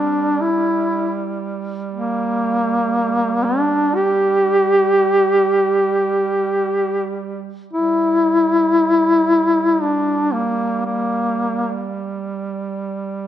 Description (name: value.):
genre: caucasian folk, Caucasian lament.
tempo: free time.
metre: none.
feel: none.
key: G dorian.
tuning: A4 = 441 Hz.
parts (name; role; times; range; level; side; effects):
mellow duduk; melody; 0.0-11.8 s; Bb3 to G4; -16 LUFS; equal; slapback echo.
warm duduk; drone; 0.0-13.3 s; G3; -26 LUFS; right 7 dB; none.
room: moderate concert hall reverb, RT60 1.9 s.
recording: none.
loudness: -16 LUFS.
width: side -11 dB against mid.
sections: 0.0-7.7 A section; 7.7-13.3 B section.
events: none.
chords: none.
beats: free time.